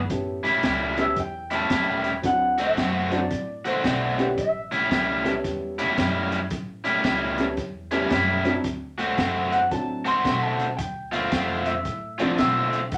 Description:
electric blues shuffle; 112 BPM; 4/4; swing 64% on 8ths; A mixolydian; A4 = 440 Hz
upright bass; bass; 0.0-13.0 s; A1 to B2; -36 LUFS; equal
warm upright piano; accompaniment; 0.1-12.4 s; F3 to A4; -30 LUFS; equal
crunchy breakbeat drum kit; drums; 0.1-13.0 s; hi-hat, kick drum, snare drum; -32 LUFS; equal
overdriven electric guitar; riff; 0.4-12.8 s; A2 to F#4; -26 LUFS; equal
electric guitar through a small old amp; melody; 1.0-5.9, 9.5-13.0 s; C5 to C6; -29 LUFS; equal
wet studio reverb, RT60 0.6 s; -24 LUFS; mono
0.1-13.0 A section
0.1 A7; 2.2 D7; 4.4 A7; 8.6 D7; 10.8 Dm7

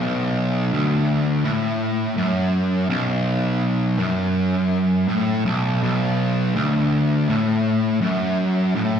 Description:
metal; 82 BPM; 4/4; straight; B minor; A4 = 440 Hz
fuzz guitar; solo; 0.0-9.0 s; B1 to A2; -18 LUFS; equal; distortion, slapback echo
little or no reverb; live gig heard through the venue's PA, recital hall reverb; -18 LUFS; side -8 dB against mid
0.0-9.0 A section

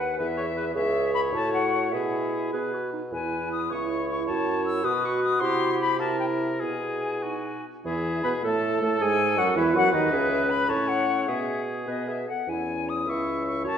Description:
quick classical-period movement for wind quintet; 94-108 BPM (dotted quarters); 6/8; rubato; E major; A4 = 441 Hz
silver concert flute; melody; 0.0-13.8 s; D#5 to E6; -28 LUFS; left 6 dB
warm oboe; second line; 0.0-13.8 s; F#4 to E5; -31 LUFS; left 1 dB
mellow French horn; accompaniment; 0.0-13.8 s; D#3 to B4; -31 LUFS; right 1 dB
mellow clarinet; accompaniment; 0.0-13.8 s; D#4 to B4; -31 LUFS; right 5 dB
dark bassoon; bass; 0.0-13.8 s; C#2 to C3; -30 LUFS; right 1 dB
wet recital hall reverb, RT60 1.7 s; recorded in a church or concert hall; -23 LUFS; side -8 dB against mid
0.0-7.8 A section; 7.8-13.8 A section
0.2 E; 0.8 C#m; 1.3 A; 1.9 E/B; 2.5 B; 3.1 E; 3.7 C#m; 4.3 F#m; 4.8 B5; 5.4 C; 6.0 C7; 6.6 E/B; 7.2 B; 7.8 E; 8.4 N.C.; 9.0 F#madd9; 9.6 E5; 10.1 C#m; 10.7 A; 11.3 E/B; 11.9 B6; 12.5 E; 13.1 C#m

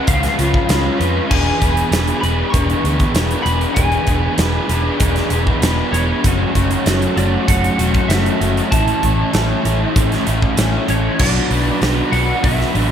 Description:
rock, shoegaze and dream pop; 97 BPM; 4/4; straight; A4 = 438 Hz
lightly driven lead guitar; melody; 0.0-12.9 s; C#5 to C#6; -24 LUFS; equal; analog chorus, ping-pong delay
raw garage guitar; riff; 0.0-12.9 s; A2 to B4; -18 LUFS; equal; overdrive, wide subtle chorus
vintage muted fingered electric bass; bass; 0.1-12.9 s; E1 to E#2; -19 LUFS; equal
big rock drum kit; drums; 0.1-12.9 s; crash cymbal, hi-hat, kick drum, snare drum; -20 LUFS; equal
moderate church reverb, RT60 2.6 s; dreamy mix soaked in reverb; -14 LUFS; side -9 dB against mid
0.0-11.2 A section; 11.2-12.9 B section
0.0 C#7; 1.3 E7; 6.2 F#m7; 8.7 A; 11.2 Bm

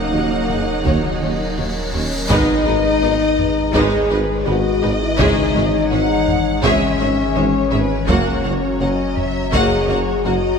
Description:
cinematic, hybrid orchestral and electronic film score; 83 BPM; 4/4; straight; G# minor; A4 = 436 Hz
rich symphonic violin section; second line; 0.0-10.3 s; B4 to F#5; -25 LUFS; left 3 dB
clear symphonic viola section; accompaniment; 0.0-10.3 s; G#3 to G#4; -24 LUFS; right 1 dB
airy breathy pad; sustained chords; 0.0-10.6 s; E3 to A#5; -26 LUFS; equal; chorus
dark French horn section; sustained chords; 0.0-10.6 s; C#4 to G#4; -20 LUFS; left 4 dB
mellow trombone section; sustained chords; 0.0-9.8 s; C#3 to B3; -30 LUFS; right 3 dB
punchy sub bass; bass; 0.0-10.6 s; D#1 to G#1; -26 LUFS; equal
rich symphonic cello section; bass; 0.0-10.3 s; F#2 to D#4; -30 LUFS; right 4 dB
cymbal swell and impact; sound effects; 1.1-5.2 s; -28 LUFS; equal
warm symphonic violin section; melody; 0.1-10.6 s; A#4 to F#5; -27 LUFS; left 2 dB
tight sequenced synth; arpeggios; 0.1-10.5 s; C#3 to G#4; -29 LUFS; left 1 dB
rich symphonic double bass section; bass; 0.1-10.3 s; F#1 to D#2; -27 LUFS; right 3 dB
warm tuba; bass; 0.1-10.4 s; F#1 to D#2; -27 LUFS; right 4 dB
taiko ensemble; drums; 0.5-10.2 s; -25 LUFS; equal
wet concert hall reverb, RT60 2.5 s; -15 LUFS; side -6 dB against mid
0.0-2.3 A section; 2.3-10.6 B section
cymbal swell 1.1-2.3; impact 2.3-5.2
0.0 D#m7; 2.3 G#m; 5.2 C#m/G#; 8.1 F#

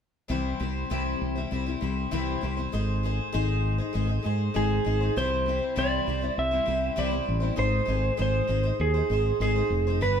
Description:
folk rock and heartland rock; 99 BPM; 4/4; straight; A4 = 440 Hz
picked twelve-string acoustic guitar; accompaniment; 0.3-10.2 s; C3 to C5; -30 LUFS; left 4 dB
fingered electric bass; bass; 0.3-10.2 s; F1 to Ab2; -27 LUFS; equal
clean lap steel guitar; melody; 4.6-10.2 s; Ab4 to E5; -27 LUFS; right 3 dB
moderate stone room reverb, RT60 1.2 s; band playing live in one room; -24 LUFS; side -7 dB against mid
0.3-5.2 A section; 5.2-10.2 B section
0.3 C; 2.7 Ab; 5.2 C; 7.6 Ab

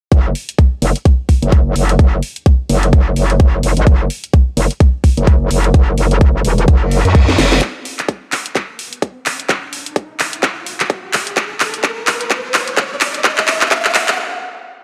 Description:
bass house; 128 BPM; 4/4; swing 58% on 16ths; A4 = 440 Hz
metallic wobble bass; bass; 0.1-7.6 s; E1 to F#2; -16 LUFS; equal; chorus, tube saturation, sidechain pumping
electronic kick drum; drums; 0.1-13.8 s; -12 LUFS; equal; high-pass filter on kick
garage drum kit; drums; 0.1-14.2 s; handclaps, hi-hat, snare drum; -20 LUFS; equal
reverse cymbal and riser; sound effects; 6.9-14.2 s; -26 LUFS; equal
light reverb; high-pass filter; -14 LUFS; mono
0.1-7.6 A section; 7.6-14.8 B section
reverse cymbal 6.9-7.6; drum fill 7.3-7.6, 7.6-14.2; build-up 7.6-14.8; riser 7.6-14.2; stop 14.2-14.8

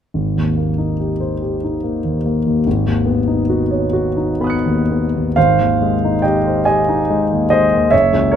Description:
classical, impressionist solo piano; 40-50 BPM (dotted quarters); 6/8; rubato; A4 = 440 Hz
clear concert grand piano; solo; 0.1-8.4 s; Gb1 to C#7; -14 LUFS; equal
light reverb; close, detailed microphones; -14 LUFS; side -9 dB against mid
0.1-5.4 A section; 5.4-8.4 B section
0.1 Abmaj9; 2.7 Badd9/Ab; 5.4 Abmaj7

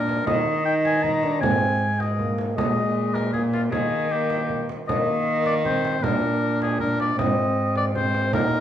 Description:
classical, renaissance-style consort dance; 157 BPM; 3/4; straight; Eb major; A4 = 440 Hz
warm oboe; melody; 0.0-8.6 s; F4 to Bb5; -26 LUFS; left 3 dB
clear trombone; accompaniment; 0.0-8.6 s; Ab3 to Eb4; -26 LUFS; equal
rich cello; bass; 0.0-8.6 s; Ab2 to Eb3; -25 LUFS; equal
frame drum; percussion; 0.1-8.5 s; -28 LUFS; right 3 dB
moderate stone room reverb, RT60 1.1 s; small room ambience; -20 LUFS; side -10 dB against mid
0.0-4.9 A section; 4.9-8.6 A section
0.3 Eb5; 1.4 Ab; 2.6 Bb7sus4; 3.3 Bb5; 3.7 Eb; 4.9 Eb5; 6.0 Bb; 7.2 Ab

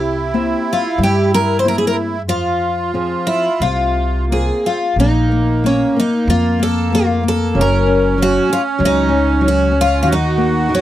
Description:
fado-style ballad; 85-97 BPM; 4/4; rubato; F harmonic minor, Bb harmonic minor from 5.0 s; A4 = 442 Hz
picked twelve-string acoustic guitar; melody; 0.0-10.8 s; Db4 to C5; -18 LUFS; equal
accordion; second line; 0.0-10.8 s; Bb3 to Gb4; -20 LUFS; right 4 dB; light tremolo tuning
nylon-string guitar; accompaniment; 0.0-10.8 s; C3 to E5; -20 LUFS; left 4 dB
upright bass; bass; 0.0-10.8 s; Gb1 to G2; -19 LUFS; equal
light reverb; dry, close 1970s-style studio recording; -13 LUFS; side -13 dB against mid
0.0-5.0 A section; 5.0-10.8 B section
0.0 C7; 2.3 Fm; 5.0 Bb5; 7.5 Gb6; 10.1 Ebm

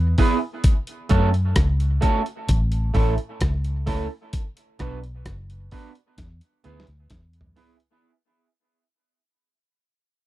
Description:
dub reggae; 65 BPM; 4/4; straight; A4 = 443 Hz
vintage muted fingered electric bass; bass; 0.0-7.5 s; F#1 to F#2; -22 LUFS; equal
electric guitar through a small old amp; accompaniment; 0.2-7.8 s; A3 to B4; -26 LUFS; right 4 dB; tape echo
dusty soul sampler-style drum kit; drums; 0.2-8.0 s; hi-hat, kick drum, rim click, snare drum, toms; -21 LUFS; equal
little or no reverb; dry, close 1970s-style studio recording; -20 LUFS; side -16 dB against mid
0.0-8.0 A section
fade-out 0.0-8.0; drum fill 6.2-8.0
0.0 E; 0.6 F#m; 2.5 A; 4.3 Bm; 6.2 E

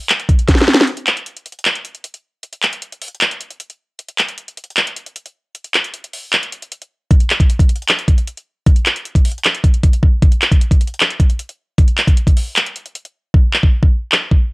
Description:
hip hop; 154 BPM; 4/4; half-time
trap drum kit; drums; 0.1-14.4 s; handclaps, hi-hat, kick drum, snare drum; -12 LUFS; equal; cassette tape
light reverb; home recording on cassette; -13 LUFS; side -26 dB against mid
0.9-14.5 A section
drum fill 0.5-0.9; break 0.9-7.1, 12.6-13.3; hi-hats muted 13.3-14.5

